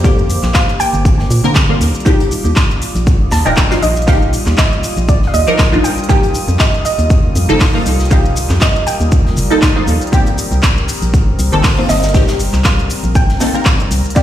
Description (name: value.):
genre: deep house.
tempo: 119 BPM.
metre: 4/4.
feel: swing 55% on 16ths.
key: C minor.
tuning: A4 = 441 Hz.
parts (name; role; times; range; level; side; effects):
warm analog pad; sustained chords; 0.0-14.2 s; G3 to Eb6; -23 LUFS; left 1 dB; chorus, sidechain pumping.
filtered dub chord stab; stabs; 0.0-14.2 s; D3 to Bb4; -17 LUFS; equal; phaser, ensemble chorus, sidechain pumping, digital delay.
organ-like FM bass; bass; 0.0-14.0 s; Eb1 to Bb2; -14 LUFS; equal; tube saturation, sidechain pumping.
big rock drum kit; drums; 0.0-14.2 s; hi-hat, shaker, snare drum; -27 LUFS; left 1 dB; sidechain pumping on hats, high-pass filter on hats, studio reverb, high-pass filter on snare, sidechain pumping on perc, high-pass filter on perc, high-pass filter on room.
deep house drum kit; drums; 0.0-14.2 s; crash cymbal, handclaps, hi-hat, shaker; -20 LUFS; equal; studio reverb.
electronic kick drum; drums; 0.0-14.2 s; none; -12 LUFS; equal; studio reverb.
soft round pluck; melody; 0.5-14.2 s; D5 to A5; -20 LUFS; right 2 dB; wide subtle chorus, digital delay.
room: light reverb, digital ambience.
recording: played on a big sound system in a bare room, large studio reverb.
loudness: -10 LUFS.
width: side -12 dB against mid.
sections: 0.0-14.2 A section.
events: none.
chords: 0.0 Bb69; 1.8 Ebmaj9; 6.1 F9sus4; 10.1 Cm7.